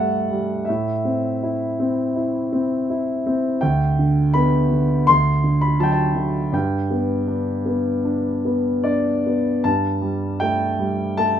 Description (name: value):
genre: classical, lyrical solo piano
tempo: 74-84 BPM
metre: 4/4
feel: rubato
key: G major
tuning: A4 = 439 Hz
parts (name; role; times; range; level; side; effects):
- dark concert grand piano; solo; 0.0-11.4 s; D2 to C6; -18 LUFS; equal; none
room: light reverb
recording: none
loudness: -18 LUFS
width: side -9 dB against mid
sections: 0.0-9.7 A section; 9.7-11.4 A section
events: none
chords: 0.0 Gsus2; 0.7 Am; 3.6 G/D; 5.1 D; 6.5 G; 9.7 Gsus2